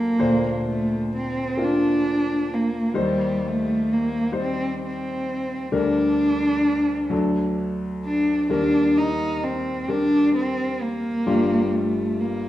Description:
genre	acoustic folk-pop ballad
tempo	43 BPM (dotted quarters)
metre	6/8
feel	straight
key	G minor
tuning	A4 = 440 Hz
part	dark cello	melody	0.0-12.5 s	G3 to Eb4	-22 LUFS	equal	none
part	warm grand piano	accompaniment	0.0-12.5 s	G1 to C5	-25 LUFS	left 2 dB	none
room	wet recital hall reverb, RT60 1.3 s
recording	minimal, uncompressed stereo recording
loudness	-20 LUFS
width	side -14 dB against mid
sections	0.0-12.5 A section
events	none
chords	0.2 Bbadd9/D; 3.0 Cm/Eb; 5.7 Gm/D; 7.1 D; 8.5 Eb; 11.3 Gm7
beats	| 0.20 1.58 | 2.96 4.34 | 5.73 7.11 | 8.50 9.89 | 11.27

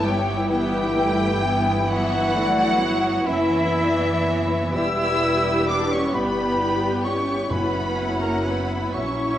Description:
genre	classical, slow romantic movement for symphony orchestra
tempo	43 BPM (dotted quarters)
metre	12/8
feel	rubato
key	unclear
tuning	A4 = 441 Hz
part	warm symphonic violin section	melody	0.0-9.4 s	E5 to E6	-28 LUFS	left 1 dB	none
part	large flute ensemble	second line	0.0-9.4 s	E5 to E6	-29 LUFS	left 2 dB	none
part	mellow clarinet	second line	0.0-9.4 s	E4	-30 LUFS	equal	none
part	mellow cor anglais	second line	0.0-9.4 s	E4 to E5	-29 LUFS	right 1 dB	none
part	rich studio violin section	second line	0.0-9.4 s	B4 to G5	-32 LUFS	left 2 dB	none
part	mellow bassoon	accompaniment	0.0-9.4 s	E3 to G3	-30 LUFS	equal	none
part	warm symphonic viola section	accompaniment	0.0-9.4 s	A3 to G4	-29 LUFS	equal	none
part	dark French horn section	sustained chords	0.0-9.4 s	F#3 to E4	-29 LUFS	left 2 dB	none
part	rich chamber cello section	bass	0.0-9.4 s	E3 to E4	-29 LUFS	right 1 dB	none
part	rich symphonic double bass section	bass	0.0-9.4 s	E1 to A#1	-29 LUFS	right 2 dB	none
part	timpani	percussion	7.5-8.9 s	F#2	-32 LUFS	equal	none
room	wet scoring stage reverb, RT60 1.7 s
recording	worn, warbling old tape, cassette tape, warbly pitch drift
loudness	-19 LUFS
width	side -11 dB against mid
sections	0.0-9.4 A section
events	none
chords	0.0 Em/G; 4.8 Em; 7.5 F#7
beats	0.50 1.89 3.26 | 4.75 6.14 7.51 8.94

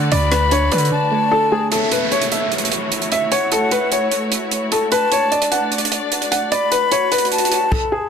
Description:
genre	hip hop, trap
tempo	150 BPM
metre	4/4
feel	half-time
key	F# minor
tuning	A4 = 439 Hz
part	felt-muted upright piano	melody	0.0-8.1 s	G#4 to F#5	-19 LUFS	left 1 dB	tape echo
part	soft round pluck	accompaniment	0.0-1.7 s	D3 to D5	-24 LUFS	right 5 dB	chorus, low-pass filter
part	warm chamber string section	sustained chords	0.0-7.7 s	A3 to D5	-25 LUFS	left 2 dB	none
part	distorted 808-style bass	bass	0.0-0.9 s	D2 to D3	-19 LUFS	left 1 dB	distortion
part	breathy hollow jazz flute	second line	0.1-8.1 s	E5 to B5	-22 LUFS	left 4 dB	tape echo
part	tight funk drum kit	drums	0.1-7.8 s	crash cymbal, hi-hat, kick drum, rim click	-21 LUFS	right 4 dB	none
part	downlifter and swell	sound effects	1.7-7.7 s	none	-26 LUFS	equal	none
room	moderate lush hall reverb, RT60 2.2 s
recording	dense, heavily limited modern master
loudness	-15 LUFS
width	side -7 dB against mid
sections	0.0-1.7 A section; 1.7-8.1 B section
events	drums muted 0.9-1.7; swell 6.5-8.1; stop 7.7-8.1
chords	0.0 D; 1.7 F#m7; 4.9 D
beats	| 0.12 0.52 0.92 1.32 | 1.72 2.12 2.52 2.92 | 3.32 3.72 4.12 4.52 | 4.92 5.32 5.72 6.12 | 6.52 6.92 7.32 7.72

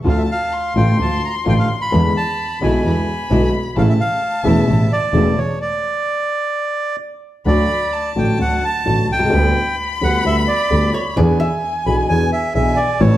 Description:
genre	tango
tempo	130 BPM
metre	4/4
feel	rubato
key	D major from 7.5 s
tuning	A4 = 441 Hz
part	warm studio string section	stabs	0.0-5.3 s	G#3 to F4	-26 LUFS	left 1 dB	none
part	clear double bass	bass	0.0-13.2 s	E1 to E2	-19 LUFS	right 1 dB	none
part	bandoneon	melody	0.1-13.2 s	C#5 to B5	-21 LUFS	right 2 dB	none
part	warm violin	second line	0.1-13.2 s	G#5 to C6	-24 LUFS	left 2 dB	none
part	warm upright piano	accompaniment	0.1-13.2 s	E1 to A4	-19 LUFS	left 2 dB	none
part	archtop guitar, miked and amplified	second line	10.9-11.7 s	C#5 to E5	-25 LUFS	left 1 dB	none
room	wet large studio reverb, RT60 1.2 s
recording	heard from further back in the room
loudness	-15 LUFS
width	side -14 dB against mid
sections	0.0-7.5 A section; 7.5-13.2 B section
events	stop 5.6-7.5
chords	0.1 Dm; 1.9 E7; 3.8 A; 5.6 N.C.; 7.5 D; 9.3 G/D; 11.2 E7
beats	| 0.05 0.52 0.99 1.46 | 1.92 2.38 2.84 3.30 | 3.76 4.22 4.68 5.14 | 5.60 6.06 6.53 7.00 | 7.46 7.93 8.39 8.86 | 9.32 9.78 10.25 10.71 | 11.16 11.62 12.09 12.55 | 13.01

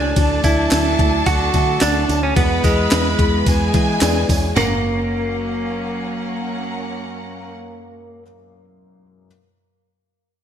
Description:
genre	piano-driven pop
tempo	109 BPM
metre	4/4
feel	straight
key	unclear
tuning	A4 = 440 Hz
part	direct-recorded clean electric guitar	melody	0.0-8.2 s	G#3 to F#4	-21 LUFS	right 3 dB	lush chorus, ping-pong delay
part	warm studio violin section	second line	0.0-7.5 s	C#4 to B5	-25 LUFS	left 1 dB	none
part	felt-muted upright piano	accompaniment	0.0-9.3 s	F#2 to E5	-26 LUFS	left 5 dB	none
part	warm studio string section	sustained chords	0.0-7.5 s	E3 to D4	-30 LUFS	equal	none
part	vintage muted fingered electric bass	bass	0.0-8.2 s	F#1 to E3	-22 LUFS	equal	none
part	breakbeat sampler-style drum kit	drums	0.2-4.7 s	handclaps, hi-hat, kick drum, ride cymbal, snare drum, toms	-20 LUFS	equal	gated reverb
part	tambourine	percussion	0.2-4.8 s	none	-33 LUFS	right 7 dB	none
room	moderate lush hall reverb, RT60 2.0 s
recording	bright 1980s-style digital production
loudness	-15 LUFS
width	side -9 dB against mid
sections	0.0-4.6 A section; 4.6-6.8 B section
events	none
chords	0.2 D; 2.4 E; 4.6 F#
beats	| 0.16 0.71 1.26 1.81 | 2.36 2.91 3.46 4.01 | 4.56 5.11 5.66 6.21

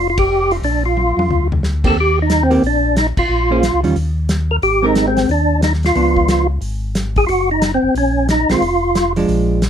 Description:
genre	soul jazz organ trio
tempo	180 BPM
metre	4/4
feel	swing 63% on 8ths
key	Eb major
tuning	A4 = 438 Hz
part	percussive tonewheel organ	melody	0.0-9.1 s	C4 to Bb4	-15 LUFS	equal	slow rotary speaker, overdrive, chorus vibrato
part	mellow tonewheel organ	bass	0.0-9.7 s	F1 to F2	-19 LUFS	left 1 dB	slow rotary speaker
part	warm soul drum kit	drums	0.2-9.7 s	crash cymbal, hi-hat, kick drum, ride cymbal, snare drum, toms	-21 LUFS	equal	none
part	hollow-body jazz guitar	accompaniment	1.8-6.5, 8.5-9.6 s	Eb3 to C5	-18 LUFS	right 3 dB	none
room	light reverb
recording	none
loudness	-13 LUFS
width	side -8 dB against mid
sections	0.0-2.0 A section; 2.0-9.7 B section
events	band accent 0.1, 3.1; drum fill 1.0-1.6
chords	0.0 Bb; 2.0 Eb6; 3.3 Bbm9; 4.0 Eb5; 4.6 Abmaj9; 6.0 Db7b9; 7.3 Gb; 8.6 Fm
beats	0.30 | 0.63 0.97 1.30 1.63 | 1.97 2.30 2.63 2.96 | 3.30 3.63 3.96 4.29 | 4.63 4.96 5.29 5.63 | 5.96 6.29 6.62 6.96 | 7.29 7.62 7.96 8.29 | 8.62 8.96 9.29 9.62

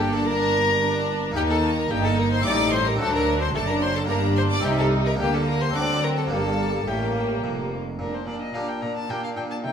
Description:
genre	classical, baroque-style concerto movement with solo episodes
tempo	109 BPM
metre	3/4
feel	straight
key	G minor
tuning	A4 = 443 Hz
part	rich violin	melody	0.0-9.7 s	G4 to Bb5	-27 LUFS	left 1 dB	none
part	warm chamber violin section	melody	0.0-9.7 s	G4 to D6	-31 LUFS	left 3 dB	none
part	warm symphonic violin section	second line	0.0-9.7 s	Bb3 to Eb4	-28 LUFS	left 2 dB	none
part	harpsichord	accompaniment	0.0-9.7 s	D2 to G4	-31 LUFS	equal	none
part	rich chamber viola section	accompaniment	0.0-9.7 s	F#3 to D4	-30 LUFS	right 2 dB	none
part	dark chamber double bass section	bass	0.0-8.0 s	F1 to Eb2	-29 LUFS	right 2 dB	none
part	rich studio cello section	bass	0.0-9.7 s	D2 to D3	-29 LUFS	right 2 dB	none
room	wet recital hall reverb, RT60 1.6 s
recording	minimal, uncompressed stereo recording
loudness	-21 LUFS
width	side -7 dB against mid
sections	0.0-8.0 A section; 8.0-9.7 B section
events	none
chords	0.0 Gm; 1.4 Eb; 2.5 Am7b5; 3.0 D7; 4.1 Gm; 4.6 Cm; 5.2 Gm/D; 5.8 D7; 6.3 Gm; 8.0 Gm/Bb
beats	0.27 0.81 | 1.36 1.91 2.45 | 3.00 3.55 4.10 | 4.65 5.20 5.75 | 6.31 6.87 7.43 | 7.99 8.54 9.09 | 9.63

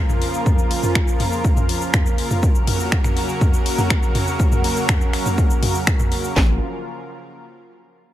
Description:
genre	melodic techno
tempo	122 BPM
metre	4/4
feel	straight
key	Bb minor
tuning	A4 = 439 Hz
part	lush unison pad	sustained chords	0.0-6.6 s	Db3 to Bb4	-24 LUFS	right 1 dB	chorus, sidechain pumping
part	punchy analog drum machine	drums	0.1-6.3 s	finger snaps, hi-hat, shaker, toms	-22 LUFS	equal	overdrive
part	techno drum kit	drums	0.5-6.5 s	handclaps, kick drum, snare drum	-18 LUFS	equal	none
part	fat analog bass	bass	6.4-6.6 s	Bb1	-22 LUFS	equal	sidechain pumping
room	light reverb, digital ambience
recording	echo-heavy mix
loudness	-16 LUFS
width	side -13 dB against mid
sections	0.0-6.4 A section; 6.4-8.1 B section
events	none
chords	0.0 Bbm; 2.4 Gb; 6.4 Bbm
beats	| 0.46 0.95 1.45 1.94 | 2.43 2.92 3.41 3.90 | 4.40 4.89 5.38 5.87 | 6.36

